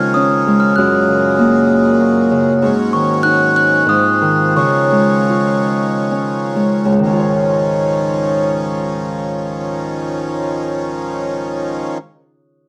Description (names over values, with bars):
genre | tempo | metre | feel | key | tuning
children's music, lullaby | 62-98 BPM | 3/4 | rubato | Db major | A4 = 439 Hz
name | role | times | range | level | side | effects
glockenspiel with rubber mallets | melody | 0.0-5.3 s | Db6 to Gb6 | -19 LUFS | equal | none
Celtic harp | accompaniment | 0.0-12.2 s | Db2 to Db5 | -18 LUFS | equal | none
accordion | sustained chords | 0.0-12.0 s | Ab2 to Db4 | -22 LUFS | equal | none
room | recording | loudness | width
light reverb | dry, close 1970s-style studio recording | -15 LUFS | mono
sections
0.0-7.0 A section; 7.0-12.7 B section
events
slowing down 2.6-7.0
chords
0.0 Dbadd9; 0.8 Gbadd9; 2.6 Ab7sus4; 3.9 Ab6; 4.5 Dbadd9